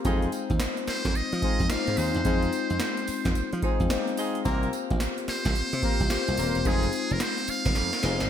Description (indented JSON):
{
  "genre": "R&B, new jack swing",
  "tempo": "109 BPM",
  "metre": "4/4",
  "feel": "swing 64% on 16ths",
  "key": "F minor",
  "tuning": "A4 = 442 Hz",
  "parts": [
    { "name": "mellow tine electric piano", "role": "accompaniment", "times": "0.0-8.3 s", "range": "Ab3 to C5", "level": "-30 LUFS", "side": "left 7 dB", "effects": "phaser" },
    { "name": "mellow horn section", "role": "stabs", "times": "0.0-8.3 s", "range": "Ab3 to Bb4", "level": "-35 LUFS", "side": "right 1 dB", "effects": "digital delay" },
    { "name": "booming analog drum machine", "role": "drums", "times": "0.0-8.3 s", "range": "hi-hat, kick drum, snare drum, tambourine", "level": "-29 LUFS", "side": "right 1 dB", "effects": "gated reverb" },
    { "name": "egg shaker", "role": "percussion", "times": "0.0-8.3 s", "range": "none", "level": "-52 LUFS", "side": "right 11 dB", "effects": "none" },
    { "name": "glassy slap bass", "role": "bass", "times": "0.1-8.3 s", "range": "Eb1 to F3", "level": "-29 LUFS", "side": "right 1 dB", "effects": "none" },
    { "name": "trumpet with metal mute", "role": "melody", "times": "0.9-8.3 s", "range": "Ab4 to F5", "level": "-30 LUFS", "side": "right 2 dB", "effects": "none" }
  ],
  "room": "moderate lush hall reverb, RT60 1.8 s, digital ambience",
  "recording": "bright 1980s-style digital production",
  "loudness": "-24 LUFS",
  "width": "side -9 dB against mid",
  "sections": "0.0-8.3 A section",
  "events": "drum fill 7.8-8.3",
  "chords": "0.0 Fm7; 4.5 C7sus4; 6.7 Fm7"
}